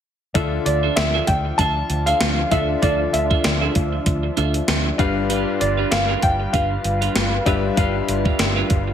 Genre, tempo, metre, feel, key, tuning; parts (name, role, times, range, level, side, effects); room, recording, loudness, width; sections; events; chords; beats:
1980s-style pop; 97 BPM; 4/4; swing 55% on 16ths; D minor; A4 = 435 Hz
clear baby grand piano; accompaniment; 0.3-8.9 s; G2 to F5; -25 LUFS; left 8 dB
vintage muted fingered electric bass; bass; 0.3-8.9 s; G1 to D2; -24 LUFS; equal
gated 80s digital drum machine; drums; 0.3-8.9 s; hi-hat, kick drum, snare drum; -21 LUFS; equal; gated reverb, gated reverb snare
brassy analog pad; sustained chords; 0.4-8.9 s; F3 to B4; -29 LUFS; right 2 dB; chorus
twelve-string electric guitar; riff; 0.4-8.9 s; D4 to F5; -28 LUFS; right 9 dB; wide subtle chorus
warm concert grand piano; melody; 0.7-8.9 s; D5 to A5; -24 LUFS; equal; tape echo
light reverb, digital ambience; -17 LUFS; side -9 dB against mid
0.4-8.9 A section
0.4 Dmadd9; 5.0 G7
| 0.35 0.97 1.59 2.21 | 2.83 3.44 4.06 4.68 | 5.30 5.92 6.54 7.16 | 7.78 8.39